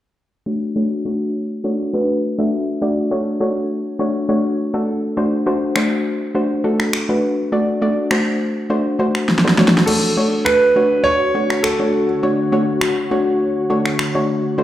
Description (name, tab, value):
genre	dance-pop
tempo	102 BPM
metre	4/4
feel	straight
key	D major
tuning	A4 = 439 Hz
part	soft round pluck	accompaniment	0.5-14.6 s	A3 to E5	-18 LUFS	left 1 dB	chorus, low-pass filter, slapback echo
part	deep house drum kit	drums	5.8-14.1 s	crash cymbal, finger snaps, snare drum	-19 LUFS	equal	overdrive, slapback echo
part	warm concert grand piano	melody	9.9-12.1 s	A4 to C#5	-16 LUFS	right 2 dB	slapback echo
part	glassy FM pad	sustained chords	10.8-14.6 s	D3 to C#5	-23 LUFS	left 2 dB	ensemble chorus, built-in reverb
room	moderate plate reverb, RT60 1.8 s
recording	live gig heard through the venue's PA, club reverb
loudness	-16 LUFS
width	side -12 dB against mid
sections	0.5-9.9 A section; 9.9-14.6 B section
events	filter sweep on synth pluck 0.5-9.9; drum fill 9.3-9.9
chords	0.5 Dmaj7; 5.2 D7; 9.6 Dmaj7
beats	| 0.47 1.05 1.64 2.23 | 2.82 3.41 3.99 4.58 | 5.17 5.76 6.35 6.93 | 7.52 8.11 8.70 9.29 | 9.88 10.46 11.05 11.64 | 12.23 12.82 13.41 13.99 | 14.58